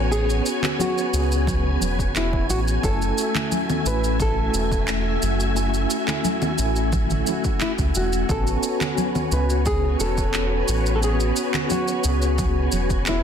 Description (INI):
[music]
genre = sunset chillout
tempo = 88 BPM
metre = 4/4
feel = straight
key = unclear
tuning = A4 = 440 Hz
[part]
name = nylon-string guitar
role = melody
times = 0.0-13.2 s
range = E4 to B4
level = -28 LUFS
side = right 1 dB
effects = digital delay
[part]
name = mellow tine electric piano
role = accompaniment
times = 0.0-13.2 s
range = A3 to G#5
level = -26 LUFS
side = left 2 dB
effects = medium stereo tremolo, auto-pan, digital delay
[part]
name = soft string machine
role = sustained chords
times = 0.0-13.2 s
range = A3 to G#5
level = -28 LUFS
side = equal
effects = ensemble chorus
[part]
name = round analog bass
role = bass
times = 0.0-13.2 s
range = E1 to C#2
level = -23 LUFS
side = equal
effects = none
[part]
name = electronic shaker, handclaps and congas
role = drums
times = 0.1-13.2 s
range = none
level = -28 LUFS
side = equal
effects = studio reverb
[part]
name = congas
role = percussion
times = 0.6-12.9 s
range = none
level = -30 LUFS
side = right 5 dB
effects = none
[part]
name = electronic kick drum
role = drums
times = 1.5-13.0 s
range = none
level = -26 LUFS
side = equal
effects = overdrive, studio reverb
[sound]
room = light reverb, digital ambience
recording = dense, heavily limited modern master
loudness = -19 LUFS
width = side -8 dB against mid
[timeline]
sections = 0.0-13.2 A section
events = none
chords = 0.0 Amaj13; 2.8 F#m9; 8.3 Amaj13